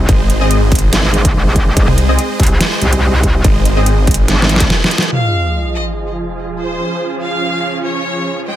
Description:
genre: heavy wobble dubstep.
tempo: 143 BPM.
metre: 4/4.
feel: half-time.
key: unclear.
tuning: A4 = 435 Hz.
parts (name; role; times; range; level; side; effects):
supersaw chords; sustained chords; 0.0-8.6 s; F3 to Eb5; -21 LUFS; right 2 dB; sidechain pumping, low-pass filter.
metallic wobble bass; bass; 0.0-4.7 s; Ab1 to C2; -13 LUFS; equal; distortion, chorus, overdrive.
snarling distorted saw bass; bass; 0.1-4.3 s; Ab1 to C2; -13 LUFS; equal; distortion, overdrive.
dubstep drum kit; drums; 0.1-5.2 s; crash cymbal, hi-hat, snare drum; -15 LUFS; right 1 dB; low-pass filter on hats, low-pass filter on snare, low-pass filter on cymbals, low-pass filter on room.
electronic kick drum; drums; 0.1-4.7 s; none; -14 LUFS; equal; overdrive.
orchestra-hit-like synth stab; stabs; 0.4-3.9 s; C4 to Eb5; -20 LUFS; left 2 dB; built-in reverb, tape echo.
clear chamber violin section; melody; 5.1-8.6 s; C5 to G5; -20 LUFS; equal; tape echo.
sub drop; sound effects; 5.1-6.8 s; none; -19 LUFS; equal; none.
room: digital ambience.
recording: none.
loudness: -11 LUFS.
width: side -12 dB against mid.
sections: 0.0-5.1 A section; 5.1-8.6 B section.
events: drop 0.0-5.1; drum fill 4.3-5.1; break 4.7-5.1; band accent 5.0; impact 5.1-6.8; filter sweep on supersaw synth 5.1-8.6.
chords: 0.0 Ab; 5.1 Fm7; 6.8 Db/F.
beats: | 0.09 0.51 0.93 1.35 | 1.77 2.19 2.60 3.02 | 3.44 3.86 4.28 4.70 | 5.12 5.54 5.96 6.38 | 6.80 7.22 7.64 8.06 | 8.48.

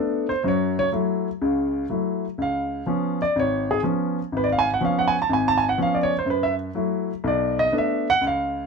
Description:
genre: solo jazz.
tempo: 124 BPM.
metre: 4/4.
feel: swing 67% on 8ths.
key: F# minor.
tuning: A4 = 445 Hz.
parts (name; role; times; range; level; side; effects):
warm grand piano; solo; 0.0-8.7 s; G#1 to A5; -20 LUFS; equal; none.
room: light reverb.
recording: none.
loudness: -20 LUFS.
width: side -4 dB against mid.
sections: 0.0-8.7 A section.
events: grand piano solo 0.0-8.7.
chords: 0.4 F#m7; 2.4 C#7; 6.3 F#m7; 7.2 Bm7.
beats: | 0.44 0.93 1.41 1.90 | 2.38 2.87 3.36 3.84 | 4.33 4.81 5.30 5.79 | 6.27 6.76 7.24 7.73 | 8.21.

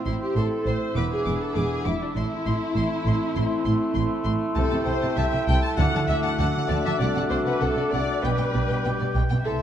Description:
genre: quick classical-period movement for symphony orchestra.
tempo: 99 BPM.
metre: 4/4.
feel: rubato.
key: G major from 4.6 s.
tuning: A4 = 438 Hz.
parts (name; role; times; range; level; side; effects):
bright large flute ensemble; second line; 0.0-9.6 s; C6 to D6; -35 LUFS; equal; none.
mellow clarinet; second line; 0.0-9.6 s; D4 to E4; -34 LUFS; equal; none.
mellow cor anglais; second line; 0.0-9.6 s; E5 to A5; -36 LUFS; right 1 dB; none.
rich chamber violin section; second line; 0.0-9.5 s; D4 to A5; -34 LUFS; left 4 dB; none.
clear bassoon; accompaniment; 0.0-9.6 s; E3 to C4; -34 LUFS; equal; none.
dark French horn section; sustained chords; 0.0-9.6 s; G3 to G4; -32 LUFS; left 3 dB; none.
warm chamber violin section; melody; 0.1-9.6 s; D5 to D6; -36 LUFS; left 6 dB; none.
rich chamber viola section; accompaniment; 0.1-9.5 s; D4 to A5; -29 LUFS; left 1 dB; none.
warm chamber cello section; bass; 0.1-9.6 s; E2 to D3; -29 LUFS; right 2 dB; none.
warm studio double bass section; bass; 0.1-9.6 s; E1 to D2; -27 LUFS; right 2 dB; none.
timpani; percussion; 5.8-6.7 s; D3; -32 LUFS; left 1 dB; none.
room: moderate scoring stage reverb, RT60 2.0 s.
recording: dark, warm production.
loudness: -22 LUFS.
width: side -10 dB against mid.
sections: 0.0-9.6 A section.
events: none.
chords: 0.0 Am; 1.0 E5; 2.2 Am; 4.6 Am7/C; 5.8 D; 7.0 D7/C; 8.2 G/B.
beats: 0.37 0.96 1.56 | 2.16 2.76 3.35 3.95 | 4.55 5.16 5.77 6.38 | 6.99 7.61 8.23 8.85 | 9.46.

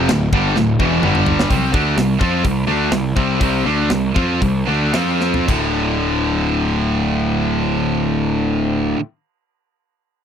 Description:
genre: heavy metal.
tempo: 109-129 BPM.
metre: 4/4.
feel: straight.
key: D minor.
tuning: A4 = 442 Hz.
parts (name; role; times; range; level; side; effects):
distorted electric guitar; riff; 0.0-9.0 s; D2 to F4; -21 LUFS; left 13 dB; overdrive.
high-gain distorted guitar; riff; 0.0-9.0 s; D2 to F4; -20 LUFS; right 11 dB; distortion.
thick fuzz guitar; riff; 0.0-1.5 s; D2 to G3; -20 LUFS; equal; distortion.
fuzz picked electric bass; bass; 0.0-8.9 s; D1 to F2; -21 LUFS; equal; overdrive.
tight metal drum kit; drums; 0.1-5.6 s; china cymbal, crash cymbal, hi-hat, kick drum, snare drum, toms; -21 LUFS; equal; none.
room: little or no reverb.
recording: dry, close 1970s-style studio recording.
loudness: -15 LUFS.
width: side -8 dB against mid.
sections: 0.0-1.5 A section; 1.5-5.5 B section; 5.5-9.9 C section.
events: drum fill 0.6-1.5, 5.2; slowing down 1.5-5.5.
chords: 0.0 Dm; 1.0 G5; 1.5 C5; 4.9 F5; 5.5 D5.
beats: 0.10 0.56 1.03 | 1.50 1.97 2.44 2.92 | 3.40 3.90 4.42 4.94 | 5.48 6.04 6.59 7.14 | 7.69 8.24 8.79.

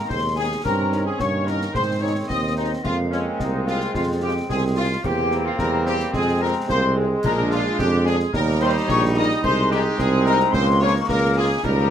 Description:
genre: military-style march for wind band.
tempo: 109 BPM.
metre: 2/4.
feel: straight.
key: Ab major.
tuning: A4 = 440 Hz.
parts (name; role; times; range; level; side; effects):
dark trumpet section; melody; 0.0-11.9 s; Db4 to Eb5; -28 LUFS; equal; none.
clear euphonium; second line; 0.0-11.9 s; G3 to C4; -29 LUFS; right 3 dB; none.
small flute group; second line; 0.0-11.9 s; Db5 to Eb6; -26 LUFS; left 6 dB; none.
clear trombone section; sustained chords; 0.0-11.9 s; Eb3 to Eb4; -27 LUFS; equal; none.
warm woodwind section; second line; 0.1-11.8 s; Db4 to Eb5; -29 LUFS; equal; none.
mellow tuba; bass; 0.1-11.9 s; Bb1 to Ab2; -22 LUFS; right 2 dB; none.
concert snare drum, concert bass drum and clash cymbals; drums; 0.1-11.9 s; none; -32 LUFS; left 1 dB; none.
warm French horn section; accompaniment; 0.4-11.5 s; Eb3 to F4; -29 LUFS; left 3 dB; none.
room: light reverb.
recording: close, detailed microphones.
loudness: -18 LUFS.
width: side -9 dB against mid.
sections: 0.0-11.9 A section.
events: none.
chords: 0.0 Ab; 0.6 Eb7/G; 1.7 Ab; 2.8 Fm; 5.0 C7/E; 6.1 Fm; 7.2 Bb7; 8.3 Eb; 9.4 Ab/C; 10.5 Bbm7/Db.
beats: 0.10 | 0.65 1.20 | 1.75 2.29 | 2.85 3.39 | 3.94 4.49 | 5.04 5.59 | 6.14 6.69 | 7.24 7.79 | 8.34 8.89 | 9.44 9.99 | 10.54 11.09 | 11.64.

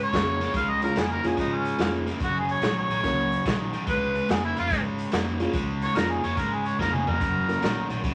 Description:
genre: electric blues shuffle.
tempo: 144 BPM.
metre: 4/4.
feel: swing 68% on 8ths.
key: Db major.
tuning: A4 = 440 Hz.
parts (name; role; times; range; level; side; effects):
mellow harmonica; melody; 0.0-7.9 s; Db4 to F5; -29 LUFS; equal; overdrive.
overdriven electric guitar; riff; 0.0-8.1 s; Gb2 to Bb3; -31 LUFS; equal; none.
vintage muted fingered electric bass; bass; 0.0-8.1 s; Gb1 to Ab2; -37 LUFS; equal; none.
dark upright piano; accompaniment; 0.1-8.0 s; F3 to Bb4; -33 LUFS; equal; none.
raw garage drum kit; drums; 0.1-8.1 s; hi-hat, kick drum, snare drum, toms; -32 LUFS; equal; none.
room: moderate studio reverb, RT60 0.6 s.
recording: vinyl crackle.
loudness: -26 LUFS.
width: mono.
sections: 0.5-8.1 A section.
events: harmonica solo 0.5-8.1; drum fill 6.8-7.2.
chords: 0.0 Db; 2.2 Gb; 3.9 Db; 7.2 Gb.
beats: 0.12 | 0.54 0.95 1.37 1.79 | 2.21 2.62 3.04 3.46 | 3.87 4.29 4.71 5.12 | 5.54 5.96 6.37 6.79 | 7.20 7.62 8.04.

